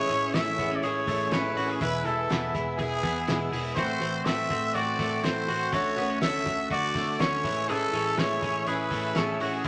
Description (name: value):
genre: jangly indie pop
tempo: 122 BPM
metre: 4/4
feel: straight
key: unclear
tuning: A4 = 440 Hz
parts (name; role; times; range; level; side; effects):
- growling trumpet; melody; 0.0-9.7 s; F#4 to E5; -31 LUFS; equal; none
- picked plugged-in twelve-string acoustic guitar; accompaniment; 0.0-9.7 s; E2 to F#4; -35 LUFS; equal; none
- ensemble organ-string; sustained chords; 0.0-9.7 s; C#4 to E6; -42 LUFS; equal; none
- twelve-string electric guitar; arpeggios; 0.0-9.7 s; E3 to G#4; -34 LUFS; equal; none
- vintage muted picked electric bass; bass; 0.1-9.7 s; E1 to D3; -41 LUFS; equal; none
- cloth-damped thuddy drum kit; drums; 0.1-9.7 s; hi-hat, kick drum, snare drum; -35 LUFS; equal; none
room: wet studio reverb, RT60 0.5 s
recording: none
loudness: -27 LUFS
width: mono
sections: 0.0-9.7 A section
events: none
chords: 0.0 Amaj7; 1.8 E; 3.8 Am6; 5.7 Dmaj7; 7.4 Amaj7